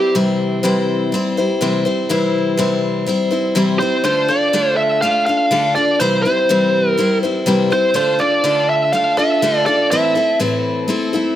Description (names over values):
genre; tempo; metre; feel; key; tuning
rock; 123 BPM; 4/4; straight; unclear; A4 = 436 Hz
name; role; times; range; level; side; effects
biting lead guitar; melody; 0.0-0.1, 3.8-10.4 s; G4 to F5; -16 LUFS; right 2 dB; overdrive
picked steel-string acoustic guitar; accompaniment; 0.0-11.4 s; A2 to C5; -16 LUFS; left 2 dB; none
room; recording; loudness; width
light reverb, studio reverb; none; -14 LUFS; side -12 dB against mid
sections
0.1-4.1 A section; 4.1-11.4 B section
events
none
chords
0.1 C; 4.1 Dm; 6.0 C; 8.0 Dm; 9.9 Am